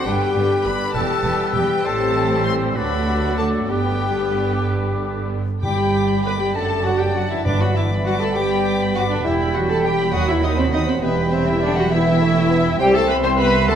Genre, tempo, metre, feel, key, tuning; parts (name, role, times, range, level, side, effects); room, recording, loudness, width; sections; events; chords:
quick classical-period movement for symphony orchestra; 67 BPM (dotted quarters); 6/8; rubato; G major; A4 = 443 Hz
rich chamber violin section; melody; 0.0-13.8 s; E5 to D#6; -29 LUFS; left 5 dB
clear clarinet; second line; 0.0-13.8 s; G4 to G5; -30 LUFS; left 2 dB
clear oboe; second line; 0.0-13.8 s; A4 to C6; -30 LUFS; right 2 dB
flute section; second line; 0.0-13.8 s; B4 to E6; -28 LUFS; left 4 dB
warm studio violin section; second line; 0.0-13.8 s; B3 to C6; -28 LUFS; left 2 dB
rich chamber viola section; accompaniment; 0.0-13.8 s; D3 to C5; -23 LUFS; right 1 dB
mellow French horn section; sustained chords; 0.0-13.8 s; B2 to G4; -27 LUFS; left 3 dB
dark bassoon; accompaniment; 0.1-13.8 s; F#3 to D4; -26 LUFS; right 1 dB
rich chamber double bass section; bass; 0.1-13.8 s; E1 to D#2; -26 LUFS; right 4 dB
warm chamber cello section; bass; 0.1-13.8 s; C2 to A2; -25 LUFS; right 3 dB
timpani; percussion; 5.6-8.3 s; G2; -26 LUFS; left 1 dB
wet concert hall reverb, RT60 2.2 s; -17 LUFS; side -8 dB against mid
0.0-5.6 A section; 5.6-13.8 B section
0.1 G; 0.9 Em; 1.8 Am7; 2.8 D; 3.7 G; 6.6 D/F#; 7.5 G; 9.2 Em; 10.1 B/D#; 11.0 Em; 12.8 C